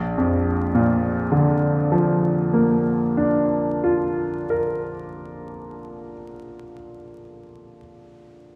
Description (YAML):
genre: classical, impressionist solo piano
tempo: 36 BPM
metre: 4/4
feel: rubato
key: Bb major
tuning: A4 = 440 Hz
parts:
  - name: clear baby grand piano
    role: solo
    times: 0.0-8.6 s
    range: Bb1 to Bb4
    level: -23 LUFS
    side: equal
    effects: none
room: wet recital hall reverb, RT60 1.3 s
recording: heard from further back in the room, vinyl crackle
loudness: -21 LUFS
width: mono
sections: 0.0-6.3 A section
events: none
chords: 0.0 Bb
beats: 1.33 3.02 4.67